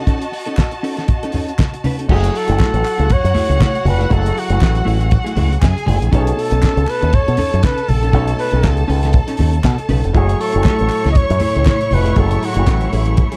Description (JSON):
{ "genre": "disco", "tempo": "119 BPM", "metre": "4/4", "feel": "swing 56% on 16ths", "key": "F# dorian", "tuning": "A4 = 439 Hz", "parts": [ { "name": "warm studio violin section", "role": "second line", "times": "0.0-13.4 s", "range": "F#4 to C#6", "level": "-28 LUFS", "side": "equal", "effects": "none" }, { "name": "mellow electric guitar", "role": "accompaniment", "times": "0.0-13.4 s", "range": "A3 to B4", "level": "-26 LUFS", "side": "equal", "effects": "none" }, { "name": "damped 70s drum kit", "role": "drums", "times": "0.1-13.4 s", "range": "crash cymbal, handclaps, hi-hat, kick drum, snare drum", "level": "-20 LUFS", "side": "equal", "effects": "none" }, { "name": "congas", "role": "percussion", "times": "0.1-13.3 s", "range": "none", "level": "-25 LUFS", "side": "equal", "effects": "none" }, { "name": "group handclap", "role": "percussion", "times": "0.6-12.8 s", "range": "none", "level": "-34 LUFS", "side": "equal", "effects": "none" }, { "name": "breathy flugelhorn", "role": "melody", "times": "2.1-12.9 s", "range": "F#4 to D#5", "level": "-22 LUFS", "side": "equal", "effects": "none" }, { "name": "clear grand piano", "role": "accompaniment", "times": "2.1-13.4 s", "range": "B2 to C#5", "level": "-29 LUFS", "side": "equal", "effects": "none" }, { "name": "fingered electric bass with an envelope filter", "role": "bass", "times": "2.1-13.2 s", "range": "E#1 to B2", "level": "-18 LUFS", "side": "equal", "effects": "none" }, { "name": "warm studio string section", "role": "sustained chords", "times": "10.2-13.4 s", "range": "A2 to E4", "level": "-26 LUFS", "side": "equal", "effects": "none" } ], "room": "little or no reverb", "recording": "dark, warm production", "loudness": "-16 LUFS", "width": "mono", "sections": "0.0-2.1 A section; 2.1-13.4 B section", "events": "none", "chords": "0.0 B9 (rootless); 2.1 F#m9; 6.1 B9; 10.2 F#m9" }